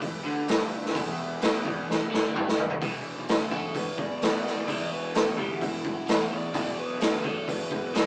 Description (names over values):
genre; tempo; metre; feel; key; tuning
blues rock power trio and southern rock; 129 BPM; 4/4; straight; E minor; A4 = 441 Hz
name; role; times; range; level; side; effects
overdriven tonewheel organ; sustained chords; 0.0-2.8 s; B3 to B4; -42 LUFS; equal; none
overdriven electric guitar; riff; 0.0-8.1 s; E2 to E3; -35 LUFS; equal; phaser
fuzz picked electric bass; bass; 0.0-8.0 s; E1 to E2; -41 LUFS; equal; overdrive
raw garage drum kit; drums; 0.0-8.1 s; hi-hat, kick drum, snare drum, toms; -30 LUFS; equal; none
dark smooth lead guitar; second line; 3.5-8.1 s; E4 to D5; -37 LUFS; equal; overdrive
room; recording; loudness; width
light reverb; rough rehearsal-room recording, tube saturation, small speaker sound; -28 LUFS; mono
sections
0.0-2.8 A section; 2.8-8.1 B section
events
drum fill 1.9-2.8; lead electric guitar solo 2.8-8.1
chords
0.0 Em; 2.8 E5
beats
0.02 0.48 | 0.95 1.42 1.88 2.35 | 2.81 3.28 3.75 4.21 | 4.68 5.15 5.61 6.08 | 6.54 7.01 7.47 7.94